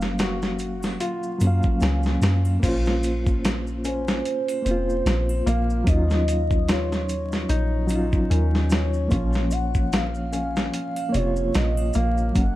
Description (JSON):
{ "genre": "trip hop", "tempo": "74 BPM", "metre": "4/4", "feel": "swing 56% on 16ths", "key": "Bb minor", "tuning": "A4 = 439 Hz", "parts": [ { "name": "reed electric piano", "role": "accompaniment", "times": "0.0-12.6 s", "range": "F3 to F5", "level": "-27 LUFS", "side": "equal", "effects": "fast tremolo, harmonic tremolo, tape echo" }, { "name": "soft 808-style bass", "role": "bass", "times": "0.0-12.6 s", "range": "F1 to Gb2", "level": "-24 LUFS", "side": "equal", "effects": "none" }, { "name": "dusty soul sampler-style drum kit", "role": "drums", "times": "0.0-12.6 s", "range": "crash cymbal, hi-hat, kick drum, snare drum", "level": "-25 LUFS", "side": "equal", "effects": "none" }, { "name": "maracas and triangle", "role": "percussion", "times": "0.0-12.5 s", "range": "none", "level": "-45 LUFS", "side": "equal", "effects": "none" }, { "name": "felt-muted upright piano", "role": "arpeggios", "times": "0.2-12.4 s", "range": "C3 to Gb4", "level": "-31 LUFS", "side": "left 2 dB", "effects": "vintage 12-bit sampler grit, tape echo" }, { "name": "pure breathy sine lead", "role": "melody", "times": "3.9-12.6 s", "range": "Bb4 to Gb5", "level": "-29 LUFS", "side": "right 1 dB", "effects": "phaser, wide subtle chorus, tape echo" } ], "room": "digital ambience", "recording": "dark, warm production, vinyl crackle", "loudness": "-20 LUFS", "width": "side -15 dB against mid", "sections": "0.0-2.6 A section; 2.6-12.6 B section", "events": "none", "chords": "0.0 Gbmaj7; 2.6 Bbmadd9; 5.9 Ebm9; 9.1 Bbmadd9", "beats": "0.19 1.00 1.81 | 2.63 3.44 4.25 5.06 | 5.87 6.68 7.49 8.30 | 9.11 9.92 10.73 11.54 | 12.36" }